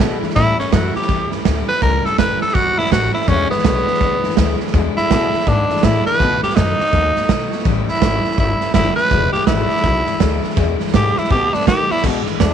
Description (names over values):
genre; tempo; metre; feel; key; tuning
rockabilly; 164 BPM; 4/4; swing 63% on 8ths; E mixolydian; A4 = 440 Hz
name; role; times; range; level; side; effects
picked steel-string acoustic guitar; accompaniment; 0.0-12.5 s; E2 to F#4; -24 LUFS; left 15 dB; none
upright bass; bass; 0.0-12.5 s; E1 to D#3; -21 LUFS; left 2 dB; none
raw garage drum kit; drums; 0.0-12.5 s; crash cymbal, hi-hat, kick drum, snare drum; -18 LUFS; right 4 dB; none
raspy tenor saxophone; melody; 0.4-12.5 s; B3 to B4; -18 LUFS; equal; tape echo
room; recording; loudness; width
small room ambience; 1960s-style stereo; -14 LUFS; side -8 dB against mid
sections
0.0-12.0 A section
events
tenor saxophone solo 0.0-12.0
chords
0.4 A7; 3.3 E7; 6.2 B7; 7.7 A7; 9.1 E7; 11.3 B7; 12.0 E7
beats
| 0.36 0.72 1.09 1.46 | 1.82 2.19 2.55 2.92 | 3.28 3.65 4.01 4.38 | 4.74 5.11 5.47 5.83 | 6.20 6.56 6.93 7.29 | 7.66 8.02 8.39 8.75 | 9.12 9.48 9.84 10.21 | 10.57 10.94 11.30 11.67 | 12.03 12.40